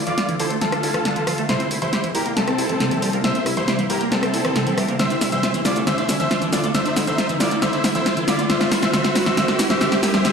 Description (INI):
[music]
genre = uplifting trance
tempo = 137 BPM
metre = 4/4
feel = straight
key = D minor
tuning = A4 = 440 Hz
[part]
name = shimmering ambient pad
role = sustained chords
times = 0.0-10.3 s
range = C3 to E5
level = -26 LUFS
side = equal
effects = chorus, built-in reverb, phaser, vintage 12-bit sampler grit
[part]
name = liquid acid bass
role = arpeggios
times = 0.0-10.3 s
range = C3 to G4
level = -26 LUFS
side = right 2 dB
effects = lush chorus, tape echo
[part]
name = fat analog bass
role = bass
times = 0.0-10.2 s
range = G1 to D2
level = -32 LUFS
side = equal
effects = high-pass filter
[part]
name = riser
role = sound effects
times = 1.0-10.3 s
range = none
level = -28 LUFS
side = left 1 dB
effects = none
[part]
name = big supersaw lead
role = melody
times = 0.1-10.3 s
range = C4 to E5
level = -24 LUFS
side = equal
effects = low-pass filter, tape echo
[part]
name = warm concert grand piano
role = second line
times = 0.1-10.3 s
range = A5 to E6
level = -30 LUFS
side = left 2 dB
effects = low-pass filter, tape echo
[part]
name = punchy analog drum machine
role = drums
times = 0.1-10.3 s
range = hi-hat, rim click, shaker, snare drum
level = -22 LUFS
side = equal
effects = overdrive
[sound]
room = wet concert hall reverb, RT60 1.8 s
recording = played on a big sound system in a bare room, stone room reverb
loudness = -18 LUFS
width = side -6 dB against mid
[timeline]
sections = 0.0-10.3 A section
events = build-up 0.0-10.3; drum fill 0.0-10.3; riser 1.0-10.3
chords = 0.0 Dmadd9; 1.5 C7; 5.0 Dmadd9; 8.5 Gm7